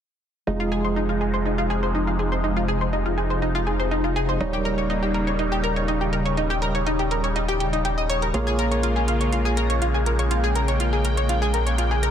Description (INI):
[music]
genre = progressive house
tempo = 122 BPM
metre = 4/4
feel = straight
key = F minor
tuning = A4 = 440 Hz
[part]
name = filtered supersaw swell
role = sustained chords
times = 0.5-12.1 s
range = C3 to G5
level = -27 LUFS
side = equal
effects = phaser
[part]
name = analog pluck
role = arpeggios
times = 0.5-12.1 s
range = Eb4 to Eb5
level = -25 LUFS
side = left 1 dB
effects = wide subtle chorus, ping-pong delay
[part]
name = warm grand piano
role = stabs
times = 0.5-12.1 s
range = G3 to Eb5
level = -29 LUFS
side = right 3 dB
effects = low-pass filter, ping-pong delay
[part]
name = round analog bass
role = bass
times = 0.5-12.1 s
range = Eb1 to Bb1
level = -25 LUFS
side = equal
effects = none
[part]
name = electronic hi-hat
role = drums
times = 0.5-12.1 s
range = none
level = -36 LUFS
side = right 4 dB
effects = low-pass filter on hats
[sound]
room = light reverb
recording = dense, heavily limited modern master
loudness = -20 LUFS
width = side -9 dB against mid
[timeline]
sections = 0.5-12.1 A section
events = none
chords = 0.5 Fm7; 4.4 Eb7; 8.3 Bbm7